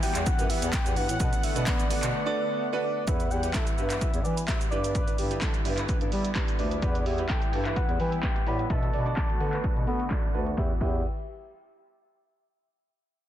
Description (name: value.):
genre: dance-pop.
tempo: 128 BPM.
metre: 4/4.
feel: straight.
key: E minor.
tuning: A4 = 440 Hz.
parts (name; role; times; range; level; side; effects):
soft octave-layered synth lead; melody; 0.0-11.0 s; D5 to B5; -35 LUFS; left 4 dB; chorus, dub echo.
clear baby grand piano; accompaniment; 0.0-11.0 s; B3 to D5; -36 LUFS; right 7 dB; sidechain pumping.
soft supersaw; sustained chords; 0.0-10.8 s; D3 to F#5; -36 LUFS; right 1 dB; sidechain pumping.
punchy analog drum machine; drums; 0.0-10.9 s; crash cymbal, handclaps, hi-hat, kick drum, shaker, snare drum; -27 LUFS; equal; none.
mellow bass clarinet; bass; 0.2-11.0 s; D2 to B3; -30 LUFS; left 1 dB; sidechain pumping.
group handclap; percussion; 0.7-1.8, 7.3-11.0 s; none; -48 LUFS; left 3 dB; none.
expressive synth lead; melody; 3.1-11.0 s; G4 to E5; -38 LUFS; right 4 dB; chorus, dub echo.
room: light reverb, digital ambience.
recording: dense, heavily limited modern master, low-pass filter.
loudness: -25 LUFS.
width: side -12 dB against mid.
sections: 0.0-3.1 A section; 3.1-10.6 B section; 10.6-12.5 C section.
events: break 2.1-3.1; filter sweep 3.1-10.6.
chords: 0.0 Emadd9; 1.2 Bm7; 3.1 Emadd9; 4.7 G6; 6.8 Emadd9; 8.7 Bm7; 10.6 Emadd9.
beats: 0.26 0.73 | 1.20 1.67 2.14 2.61 | 3.08 3.54 4.01 4.48 | 4.95 5.42 5.89 6.36 | 6.83 7.29 7.76 8.23 | 8.70 9.17 9.64 10.11 | 10.58.